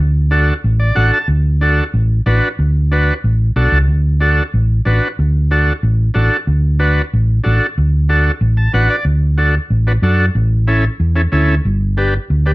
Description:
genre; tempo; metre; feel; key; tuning
latin, cumbia; 185 BPM; 4/4; straight; D major; A4 = 439 Hz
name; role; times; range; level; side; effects
hollow-body short-scale fingered electric bass; bass; 0.0-12.5 s; G1 to F#2; -13 LUFS; equal; none
combo organ; accompaniment; 0.3-12.5 s; C#4 to A5; -17 LUFS; equal; none
room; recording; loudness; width
little or no reverb; dark, warm production; -12 LUFS; side -19 dB against mid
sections
0.0-9.1 A section; 9.1-12.5 B section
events
transistor combo organ fill 0.6-1.3, 8.4-9.1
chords
0.0 D; 10.4 A; 11.6 G

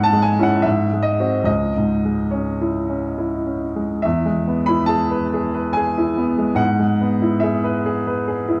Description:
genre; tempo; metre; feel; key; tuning
classical, romantic nocturne for solo piano; 71 BPM; 3/4; rubato; C# minor, E major from 4.0 s; A4 = 442 Hz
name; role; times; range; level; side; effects
bright grand piano; solo; 0.0-8.6 s; C#2 to B5; -20 LUFS; equal; none
room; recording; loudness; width
wet recital hall reverb, RT60 1.4 s; dark, warm production; -20 LUFS; mono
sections
0.0-4.0 A section; 4.0-8.6 B section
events
none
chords
0.0 C#m/G#; 0.6 G#7; 1.5 C#m; 4.0 E; 6.6 E/G#

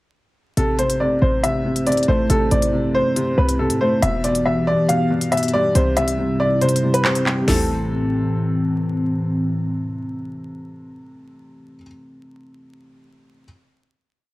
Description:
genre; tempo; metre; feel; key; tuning
hip hop, drill; 139 BPM; 4/4; half-time; A minor; A4 = 440 Hz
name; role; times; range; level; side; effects
warm upright piano; melody; 0.6-8.7 s; G4 to F5; -21 LUFS; equal; none
felt-muted upright piano; accompaniment; 0.6-13.4 s; B2 to C4; -24 LUFS; left 1 dB; none
dark analog pad; sustained chords; 0.6-11.7 s; A2 to C5; -24 LUFS; equal; chorus
short 808-style bass; bass; 0.6-9.2 s; E1 to A2; -22 LUFS; equal; none
drill drum kit; drums; 0.6-7.6 s; handclaps, hi-hat, snare drum, toms; -24 LUFS; left 1 dB; none
room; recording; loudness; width
light reverb; vinyl crackle; -17 LUFS; side -18 dB against mid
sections
0.6-7.5 breakdown; 7.5-10.9 final chord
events
kick muted 6.6-7.5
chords
0.6 Am; 4.0 Em; 5.8 C; 7.5 Am

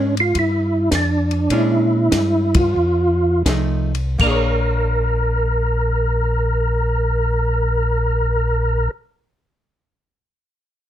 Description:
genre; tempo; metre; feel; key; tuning
soul jazz organ trio; 78-109 BPM; 4/4; swing 67% on 8ths; Bb mixolydian; A4 = 440 Hz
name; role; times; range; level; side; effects
percussive tonewheel organ; melody; 0.0-8.9 s; C#4 to Bb4; -19 LUFS; right 1 dB; slow rotary speaker, chorus vibrato
archtop guitar, miked and amplified; accompaniment; 0.0-9.0 s; F3 to C#5; -24 LUFS; right 1 dB; none
mellow tonewheel organ; bass; 0.0-8.9 s; Bb1 to Bb2; -20 LUFS; equal; slow rotary speaker
compact cocktail drum kit; drums; 0.2-4.4 s; crash cymbal, hi-hat, kick drum, ride cymbal, snare drum; -22 LUFS; equal; none
room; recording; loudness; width
little or no reverb; close, detailed microphones; -16 LUFS; side -11 dB against mid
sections
0.0-4.2 A section; 4.2-10.4 B section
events
slowing down 0.0-4.2; band accent 2.4-2.8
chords
0.0 Bb7#9; 2.8 F7#9; 4.2 Bb7#9

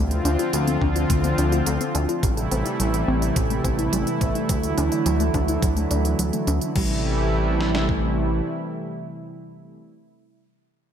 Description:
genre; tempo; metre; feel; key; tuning
synthwave; 106 BPM; 4/4; straight; A minor; A4 = 438 Hz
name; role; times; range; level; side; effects
warm analog pad; sustained chords; 0.0-9.8 s; C3 to F4; -24 LUFS; equal; chorus, sidechain pumping
analog pluck; arpeggios; 0.0-7.0 s; F#3 to F4; -28 LUFS; left 2 dB; chorus, ping-pong delay
chorused synth bass; bass; 0.0-8.4 s; A1 to D2; -24 LUFS; equal; tube saturation, sidechain pumping
pop drum kit; drums; 0.1-6.9 s; crash cymbal, hi-hat; -32 LUFS; right 2 dB; small room ambience
detuned 8-bit digital drum machine; drums; 0.8-8.0 s; kick drum, snare drum; -25 LUFS; equal; small room ambience, gated reverb
room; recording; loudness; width
moderate lush hall reverb, RT60 1.8 s; bright 1980s-style digital production; -20 LUFS; side -9 dB against mid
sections
0.0-6.8 A section; 6.8-9.0 B section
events
filter sweep on synth arpeggio sound 0.0-6.8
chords
0.0 Dm7; 2.2 Am7; 4.5 Dadd9; 6.8 Am7

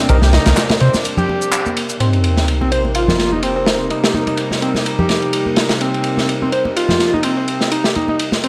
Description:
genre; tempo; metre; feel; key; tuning
breakbeat, breaks; 126 BPM; 4/4; swing 55% on 16ths; C minor; A4 = 440 Hz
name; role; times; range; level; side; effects
bright chamber string section; sustained chords; 0.0-8.5 s; C3 to Eb4; -25 LUFS; equal; sidechain pumping, low-pass filter
overdriven synth lead; riff; 0.0-8.5 s; C4 to C5; -22 LUFS; equal; distortion, chorus, digital delay
saturated sub bass; bass; 0.1-0.9 s; C2 to C3; -14 LUFS; equal; none
crunchy breakbeat drum kit; drums; 0.1-8.5 s; kick drum, ride cymbal, snare drum; -21 LUFS; equal; high-pass filter on kick, high-pass filter on cymbals, high-pass filter on snare, high-pass filter on room
electronic shaker and handclaps; drums; 0.1-2.0 s; none; -25 LUFS; equal; none
congas; percussion; 0.3-8.4 s; none; -25 LUFS; equal; none
sub drop; sound effects; 2.0-3.9 s; none; -21 LUFS; equal; none
room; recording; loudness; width
moderate plate reverb, RT60 1.4 s, small room ambience; dark, warm production; -16 LUFS; mono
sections
0.0-2.0 A section; 2.0-8.5 B section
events
break 1.0-2.0; band accent 1.5; impact 2.0-3.9; filter sweep on string section 2.0-8.5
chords
0.0 Cm7

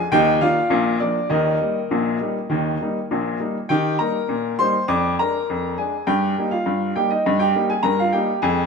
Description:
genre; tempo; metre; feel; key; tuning
ragtime piano; 101 BPM; 2/4; straight; Eb major; A4 = 440 Hz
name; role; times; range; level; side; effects
clear upright piano; solo; 0.0-8.7 s; Bb1 to D6; -18 LUFS; equal; none
room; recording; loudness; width
wet echo chamber reverb, RT60 2.2 s; minimal, uncompressed stereo recording; -18 LUFS; side -5 dB against mid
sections
0.0-3.7 A section; 3.7-8.7 B section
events
none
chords
0.1 Eb; 0.7 Bb; 1.3 Eb; 4.9 Ddim/F; 6.1 Eb/G

